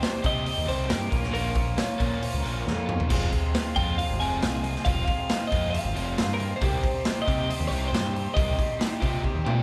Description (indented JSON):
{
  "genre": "indie rock",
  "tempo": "137 BPM",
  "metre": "4/4",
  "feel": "straight",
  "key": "F minor",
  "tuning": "A4 = 442 Hz",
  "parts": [
    { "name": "twelve-string electric guitar", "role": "melody", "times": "0.0-8.8 s", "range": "Bb4 to Ab5", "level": "-33 LUFS", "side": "equal", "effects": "none" },
    { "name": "tine electric piano", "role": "second line", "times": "0.0-9.6 s", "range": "Eb4 to Db5", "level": "-44 LUFS", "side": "equal", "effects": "none" },
    { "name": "percussive tonewheel organ", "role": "sustained chords", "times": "0.0-9.6 s", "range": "G4 to Db6", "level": "-44 LUFS", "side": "equal", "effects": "none" },
    { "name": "crunchy overdriven guitar", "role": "riff", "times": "0.0-9.6 s", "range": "Eb3 to G4", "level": "-39 LUFS", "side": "equal", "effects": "none" },
    { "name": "overdriven electric guitar", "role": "riff", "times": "0.0-9.6 s", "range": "F2 to G4", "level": "-36 LUFS", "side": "equal", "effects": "none" },
    { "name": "raw garage drum kit", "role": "drums", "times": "0.0-9.6 s", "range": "crash cymbal, hi-hat, kick drum, snare drum, toms", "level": "-30 LUFS", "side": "equal", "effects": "none" },
    { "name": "growling picked electric bass", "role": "bass", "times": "0.2-9.6 s", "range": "F1 to C3", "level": "-32 LUFS", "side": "equal", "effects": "overdrive" }
  ],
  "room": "moderate large studio reverb, RT60 1.2 s",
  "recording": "band playing live in one room",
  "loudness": "-26 LUFS",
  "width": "mono",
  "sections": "0.0-9.6 A section",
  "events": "drum fill 2.7-3.1, 9.2-9.6",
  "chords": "0.0 Cm; 1.1 Bbm; 3.1 Fm; 6.6 Cm"
}